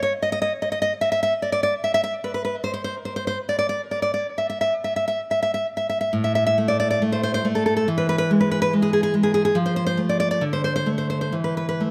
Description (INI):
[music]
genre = romantic piece for solo classical guitar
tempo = 63-75 BPM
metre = 2/4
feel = rubato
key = unclear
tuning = A4 = 438 Hz
[part]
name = nylon-string guitar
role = solo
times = 0.0-11.9 s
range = A2 to E5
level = -22 LUFS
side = equal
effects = tape echo
[sound]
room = light reverb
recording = close, detailed microphones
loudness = -22 LUFS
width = mono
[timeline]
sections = 0.0-6.1 A section; 6.1-11.9 B section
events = none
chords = 0.0 N.C.; 7.9 E; 9.6 F; 10.4 D5; 11.3 Esus4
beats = 0.12 | 0.92 1.74 | 2.54 3.37 | 4.26 5.20 | 6.12 7.01 | 7.87 8.73 | 9.56 10.43 | 11.34